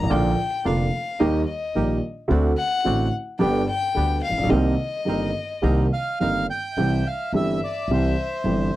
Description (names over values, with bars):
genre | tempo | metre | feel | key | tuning
tango | 108 BPM | 4/4 | rubato | C minor | A4 = 440 Hz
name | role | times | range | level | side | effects
warm violin | second line | 0.0-8.8 s | Eb5 to Bb5 | -27 LUFS | left 5 dB | none
dark upright piano | accompaniment | 0.0-8.7 s | F1 to G4 | -22 LUFS | right 1 dB | none
upright bass | bass | 0.0-8.7 s | F1 to Eb2 | -25 LUFS | equal | none
bandoneon | stabs | 0.1-6.4 s | Bb3 to Bb4 | -31 LUFS | right 5 dB | none
bandoneon | melody | 5.9-8.8 s | C5 to G5 | -27 LUFS | right 3 dB | none
room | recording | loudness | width
little or no reverb | dry, close 1970s-style studio recording | -20 LUFS | side -15 dB against mid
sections
0.0-6.8 A section; 6.8-8.8 B section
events
violin solo 0.0-6.8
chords
0.1 Bb; 1.2 Eb; 2.3 D7; 3.4 G; 4.5 Cm7; 6.8 C